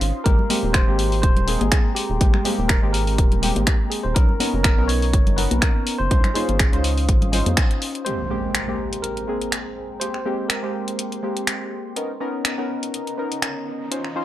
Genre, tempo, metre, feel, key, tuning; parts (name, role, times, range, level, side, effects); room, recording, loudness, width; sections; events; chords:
deep house; 123 BPM; 4/4; swing 55% on 16ths; Ab major; A4 = 440 Hz
warbly tape-like pad; sustained chords; 0.0-14.2 s; Ab3 to Eb6; -34 LUFS; equal; chorus, built-in reverb, sidechain pumping
warm analog keys; stabs; 0.0-14.2 s; Ab3 to C5; -26 LUFS; equal; chorus, sidechain pumping
rubbery square bass; bass; 0.0-7.6 s; Eb1 to F2; -22 LUFS; equal; sidechain pumping
house drum kit; drums; 0.0-14.1 s; finger snaps, hi-hat; -25 LUFS; left 1 dB
tine electric piano; melody; 0.2-11.7 s; G4 to C#5; -29 LUFS; equal; fast stereo tremolo, tape echo
electronic kick drum; drums; 0.3-7.7 s; -18 LUFS; equal
congas; percussion; 0.4-7.6 s; -29 LUFS; left 3 dB
impact and riser; sound effects; 8.1-14.2 s; -35 LUFS; equal
digital ambience; dry, gritty hardware recording; -18 LUFS; side -14 dB against mid
0.0-8.1 A section; 8.1-14.2 B section
filter sweep on synth keys 0.0-8.1; band accent 7.6; impact 8.1-10.0; riser 12.7-14.2
0.3 Abmaj9; 4.2 Bmaj9; 6.1 Dbmaj9; 8.1 Abmaj9; 12.0 Bmaj9